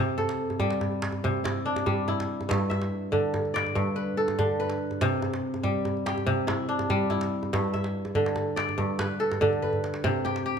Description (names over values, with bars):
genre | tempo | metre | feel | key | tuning
west african traditional, West African string and xylophone music | 95 BPM (dotted quarters) | 12/8 | straight | C major | A4 = 440 Hz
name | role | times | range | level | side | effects
kora | arpeggios | 0.0-10.6 s | G2 to E5 | -26 LUFS | equal | none
djembe | percussion | 0.2-10.6 s | none | -31 LUFS | right 2 dB | none
room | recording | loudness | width
moderate recital hall reverb, RT60 1.8 s | close, detailed microphones | -25 LUFS | side -7 dB against mid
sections
0.0-10.0 A section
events
drum fill 9.5-10.0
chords
0.0 C; 2.5 G; 5.0 C; 7.5 G; 10.0 C5